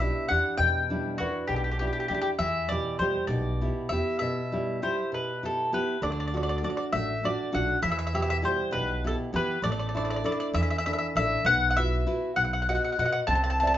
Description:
italian folk, Italian serenade; 66 BPM (dotted quarters); 6/8; straight; E minor; A4 = 441 Hz
mandolin; melody; 0.0-13.8 s; F#4 to A5; -28 LUFS; left 2 dB
nylon-string guitar; accompaniment; 0.0-13.8 s; B2 to E5; -30 LUFS; right 1 dB
upright bass; bass; 0.0-13.8 s; A1 to E3; -31 LUFS; equal
moderate studio reverb, RT60 0.6 s; band playing live in one room, nothing above 7.6 kHz; -25 LUFS; side -12 dB against mid
0.0-6.0 A section; 6.0-13.8 B section
0.0 Em7; 2.4 Em; 6.0 D; 7.8 Em; 9.6 Asus4; 11.5 Bsus4; 12.4 B
| 0.60 1.50 | 2.40 3.29 | 4.20 5.11 | 6.02 6.93 | 7.83 8.73 | 9.63 10.54 | 11.45 12.37 | 13.28

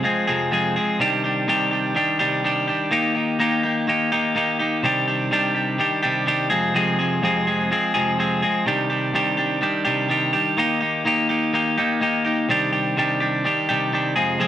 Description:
rock; 125 BPM; 4/4; straight; C minor; A4 = 441 Hz
clean electric guitar; solo; 0.0-14.5 s; F2 to Ab4; -18 LUFS; equal
moderate studio reverb, RT60 0.9 s; band playing live in one room; -18 LUFS; side -11 dB against mid
0.0-4.8 A section; 4.8-14.5 B section
0.0 Fm; 1.0 Cmadd9; 2.9 Eb; 4.8 Cmadd9; 6.5 Fm; 8.7 Cmadd9; 10.6 Eb; 12.5 Cmadd9
0.05 0.53 | 1.00 1.48 1.96 2.44 | 2.92 3.40 3.88 4.35 | 4.83 5.31 5.79 6.27 | 6.75 7.23 7.70 8.18 | 8.66 9.14 9.62 10.10 | 10.58 11.06 11.54 12.02 | 12.50 12.98 13.46 13.94 | 14.41

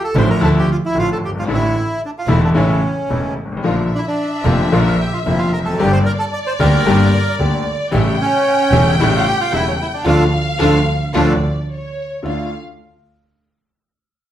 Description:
tango; 112 BPM; 4/4; rubato; D minor; A4 = 439 Hz
bandoneon; melody; 0.0-11.3 s; C#4 to D5; -19 LUFS; right 2 dB
bright concert grand piano; accompaniment; 0.1-12.5 s; E1 to G4; -18 LUFS; left 2 dB
clear symphonic string section; stabs; 0.2-12.5 s; F3 to G4; -26 LUFS; right 1 dB
warm double bass; bass; 0.2-12.5 s; E1 to D2; -19 LUFS; right 1 dB
warm studio violin section; second line; 3.6-12.5 s; C#5 to G5; -23 LUFS; left 1 dB
vintage hollow-body jazz guitar; second line; 10.0-12.5 s; D4 to A4; -23 LUFS; right 2 dB
wet club reverb, RT60 0.8 s; heard from further back in the room; -14 LUFS; side -11 dB against mid
0.0-12.2 A section; 12.2-14.3 B section
band accent 10.1-12.2
0.0 Dmadd9; 1.5 Asus4; 2.6 A; 3.7 Bb; 5.8 Gm; 7.9 A7; 10.1 Dm; 11.7 N.C.; 12.2 Dm
0.42 0.96 | 1.49 2.03 2.56 3.11 | 3.65 4.19 4.73 5.27 | 5.80 6.33 6.87 7.40 | 7.93 8.46 8.99 9.52 | 10.05 10.59 11.14 11.69 | 12.23

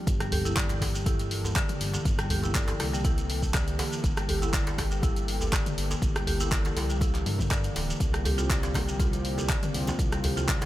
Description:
afro house; 121 BPM; 4/4; swing 53% on 16ths; G dorian; A4 = 444 Hz
warm analog pad; sustained chords; 0.0-10.7 s; E3 to A4; -36 LUFS; equal; chorus, sidechain pumping
smooth synth bass; bass; 0.1-10.7 s; D1 to G2; -31 LUFS; equal; sidechain pumping
deep house drum kit; drums; 0.1-10.7 s; handclaps, hi-hat, rim click, toms; -33 LUFS; equal
electronic kick drum; drums; 0.1-10.6 s; -28 LUFS; equal
shekere; percussion; 0.1-10.7 s; -40 LUFS; right 2 dB
marimba with medium hard mallets; arpeggios; 0.2-10.7 s; D3 to G4; -34 LUFS; left 1 dB; sidechain pumping, tape echo
djembe; percussion; 0.3-10.7 s; -36 LUFS; equal
congas; percussion; 8.3-10.7 s; -42 LUFS; left 1 dB
light reverb; -25 LUFS; side -14 dB against mid
0.1-10.7 A section
drop 0.1-10.7
0.1 Gm69; 8.0 C7sus4
| 0.07 0.57 1.07 1.56 | 2.06 2.55 3.05 3.55 | 4.04 4.54 5.03 5.53 | 6.03 6.52 7.02 7.51 | 8.01 8.51 9.00 9.50 | 9.99 10.49

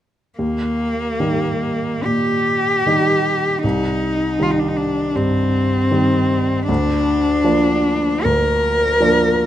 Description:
classical, romantic duo for cello and grand piano; 67-80 BPM; 4/4; rubato; Eb major; A4 = 441 Hz
rich cello; melody; 0.4-9.5 s; Bb3 to Bb4; -18 LUFS; left 1 dB
clear grand piano; accompaniment; 0.4-9.5 s; C2 to Eb4; -19 LUFS; right 1 dB
moderate recital hall reverb, RT60 1.5 s; close, detailed microphones; -15 LUFS; side -12 dB against mid
0.4-9.5 A section
0.4 Eb; 3.6 Cm; 6.7 Bb/D
| 0.39 1.20 2.05 2.87 | 3.63 4.39 5.16 5.92 | 6.69 7.45 8.25 9.01

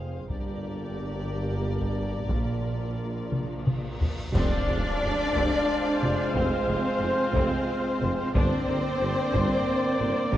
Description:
cinematic, epic orchestral film score; 60 BPM (dotted quarters); 6/8; straight; A4 = 440 Hz
warm symphonic violin section; melody; 0.0-10.4 s; Bb4 to F5; -38 LUFS; left 4 dB
warm symphonic violin section; second line; 0.0-10.4 s; Bb4 to D5; -38 LUFS; left 2 dB
warm symphonic viola section; accompaniment; 0.0-10.4 s; C4 to F5; -36 LUFS; equal
mellow French horn section; sustained chords; 0.0-10.4 s; Ab3 to D4; -34 LUFS; left 2 dB
rich symphonic double bass section; bass; 0.0-10.4 s; F1 to Bb1; -32 LUFS; right 1 dB
warm symphonic cello section; bass; 0.0-10.4 s; F2 to D4; -33 LUFS; right 1 dB
taiko ensemble; drums; 0.3-10.4 s; -30 LUFS; equal
cymbal swell, clash cymbals and concert bass drum; percussion; 0.3-5.6 s; -34 LUFS; equal
cymbal swell and impact; sound effects; 3.8-6.4 s; -41 LUFS; equal
mellow hollow concert flute; second line; 4.3-10.4 s; C5 to D5; -34 LUFS; left 1 dB
dark symphonic string section; sustained chords; 4.3-10.4 s; Bb3 to Ab5; -36 LUFS; equal
mellow trombone section; sustained chords; 4.3-10.4 s; D3 to Bb3; -35 LUFS; right 1 dB
clear trumpet; stabs; 4.3-10.4 s; C5 to D5; -34 LUFS; right 2 dB
mellow tuba; bass; 4.3-10.4 s; F1 to Bb1; -34 LUFS; right 2 dB
wet concert hall reverb, RT60 2.3 s; worn, warbling old tape, cassette tape, warbly pitch drift; -24 LUFS; side -13 dB against mid
0.0-4.3 A section; 4.3-10.4 B section
drum fill 3.3-4.3; cymbal swell 3.8-4.3; band accent 4.3-5.0; impact 4.3-6.4
0.3 Gm; 2.3 Bb; 4.3 Fm; 8.3 Gm
| 0.29 1.29 | 2.30 3.32 | 4.34 5.35 | 6.35 7.35 | 8.35 9.34 | 10.33

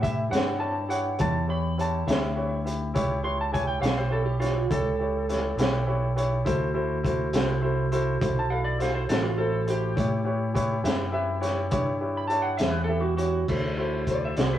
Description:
slow blues; 68 BPM (dotted quarters); 12/8; straight; A4 = 445 Hz
electric slide guitar; second line; 0.0-13.5 s; F4 to C6; -30 LUFS; right 2 dB
clear baby grand piano; accompaniment; 0.0-14.6 s; E4 to E5; -29 LUFS; equal
fingered electric bass; bass; 0.0-14.6 s; A1 to A2; -28 LUFS; equal
crunchy breakbeat drum kit; drums; 0.0-14.5 s; crash cymbal, hi-hat, kick drum, snare drum; -29 LUFS; equal
electric guitar through a small old amp; melody; 14.1-14.6 s; B4 to E5; -31 LUFS; left 2 dB
moderate studio reverb, RT60 0.6 s; rough rehearsal-room recording; -24 LUFS; side -11 dB against mid
0.0-13.5 A section; 13.5-14.6 A section
electric slide guitar solo 0.0-13.5; clean electric guitar solo 13.5-14.6
0.0 A9; 6.5 D9; 10.0 A9; 13.5 D9
0.32 1.20 2.07 | 2.95 3.83 4.71 5.58 | 6.46 7.34 8.22 9.09 | 9.97 10.85 11.73 12.60 | 13.48 14.36

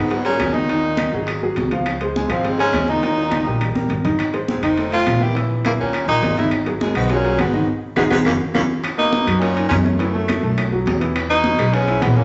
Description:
Afro-Cuban jazz; 206 BPM; 4/4; straight; B major from 8.8 s; A4 = 440 Hz
mellow tenor saxophone; melody; 0.0-12.2 s; G#3 to G4; -24 LUFS; equal
bright baritone saxophone; second line; 0.0-12.2 s; D#2 to D#3; -30 LUFS; equal
warm grand piano; accompaniment; 0.0-12.2 s; D#3 to E#5; -25 LUFS; equal
upright bass; bass; 0.0-12.2 s; E#1 to G#2; -26 LUFS; equal
bongos; percussion; 0.1-12.2 s; -32 LUFS; equal
congas; percussion; 0.1-12.2 s; -27 LUFS; equal
timbales; percussion; 0.1-12.2 s; -33 LUFS; equal
claves; percussion; 0.4-12.2 s; -34 LUFS; equal
wet large studio reverb, RT60 1.2 s; nothing above 7.9 kHz; -19 LUFS; mono
0.0-8.8 A section; 8.8-12.2 B section
drum fill 3.0-4.2, 7.7-8.8; band accent 7.7-8.8
0.0 G#7sus2; 1.3 C#add11/G#; 1.9 C#maj9; 3.0 D#; 4.2 G#6; 4.8 F; 5.4 A#dim7; 5.9 D#; 6.5 G#m7; 8.3 F#7(no3); 8.8 Bmaj9; 10.0 B5; 11.2 Emaj7
0.10 0.40 | 0.69 0.98 1.27 1.56 | 1.86 2.15 2.44 2.73 | 3.02 3.31 3.60 3.90 | 4.19 4.48 4.77 5.06 | 5.35 5.64 5.93 6.22 | 6.51 6.80 7.10 7.39 | 7.68 7.97 8.26 8.55 | 8.84 9.13 9.42 9.71 | 9.99 10.28 10.57 10.86 | 11.15 11.44 11.73 12.02

